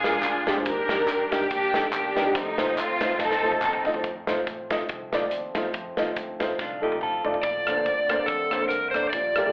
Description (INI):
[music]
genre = uptempo gospel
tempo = 142 BPM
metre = 4/4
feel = swing 56% on 8ths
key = Bb major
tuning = A4 = 440 Hz
[part]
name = warm studio string section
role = melody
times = 0.0-4.0 s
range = A3 to Bb4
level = -24 LUFS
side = equal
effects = slapback echo
[part]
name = dark concert grand piano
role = accompaniment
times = 0.0-9.5 s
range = Bb2 to Eb5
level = -27 LUFS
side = equal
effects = slapback echo
[part]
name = fingered electric bass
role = bass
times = 0.0-9.5 s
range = Ab1 to G2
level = -46 LUFS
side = equal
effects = none
[part]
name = natural country drum kit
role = drums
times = 0.0-9.5 s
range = hi-hat, kick drum, rim click, snare drum, toms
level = -31 LUFS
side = equal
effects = none
[part]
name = tambourine and handclaps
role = percussion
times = 0.1-3.9 s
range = none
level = -35 LUFS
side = equal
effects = slapback echo
[part]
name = warm French horn section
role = sustained chords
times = 4.0-9.5 s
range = D3 to F4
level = -38 LUFS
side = equal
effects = none
[part]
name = clean electric guitar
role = second line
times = 6.6-7.4 s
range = D4 to A4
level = -29 LUFS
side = equal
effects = spring reverb, slapback echo
[part]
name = overdriven slide guitar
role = melody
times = 7.4-9.5 s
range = A4 to D5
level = -24 LUFS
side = equal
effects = none
[sound]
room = moderate club reverb, RT60 0.9 s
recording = live gig heard through the venue's PA, club reverb, telephone sound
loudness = -22 LUFS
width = side -37 dB against mid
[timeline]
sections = 0.0-4.0 A section; 4.0-7.4 B section; 7.4-9.5 C section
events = drum fill 3.2-4.0, 6.6-7.4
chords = 0.0 Bb7; 0.7 Ebmaj7; 2.4 F7; 7.4 Bbmaj9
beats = 0.24 | 0.66 1.08 1.50 1.93 | 2.35 2.77 3.20 3.62 | 4.04 4.47 4.89 5.31 | 5.74 6.16 6.59 7.01 | 7.43 7.86 8.28 8.71 | 9.13